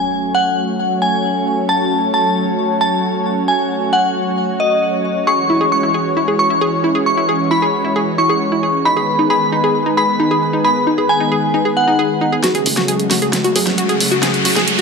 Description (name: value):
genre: uplifting trance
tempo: 134 BPM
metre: 4/4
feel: straight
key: F# dorian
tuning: A4 = 440 Hz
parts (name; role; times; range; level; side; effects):
- glassy synth bell; second line; 0.0-12.3 s; D#5 to C#6; -16 LUFS; left 1 dB; chorus, tremolo, digital delay
- lush unison pad; sustained chords; 0.0-14.8 s; C#3 to C#5; -18 LUFS; equal; chorus
- analog pluck; arpeggios; 5.3-14.8 s; D#4 to G#4; -18 LUFS; equal; chorus, digital delay
- big-room dance drum kit; drums; 12.4-14.8 s; hi-hat, snare drum; -18 LUFS; right 1 dB; overdrive, high-pass filter on hats, low-pass filter on hats, high-pass filter on perc, low-pass filter on perc, high-pass filter on snare, low-pass filter on snare
- riser; sound effects; 13.2-14.8 s; none; -22 LUFS; equal; none
- plucky analog bass; bass; 12.7-14.6 s; F#1 to F#2; -32 LUFS; equal; none
room: moderate lush hall reverb, RT60 2.1 s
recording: none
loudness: -13 LUFS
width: side -4 dB against mid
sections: 0.0-12.4 A section; 12.4-14.8 B section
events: build-up 12.4-14.8; drum fill 12.4-14.8; riser 13.2-14.8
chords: 0.0 F#madd9; 5.3 C#m; 8.9 G#m; 12.4 F#madd9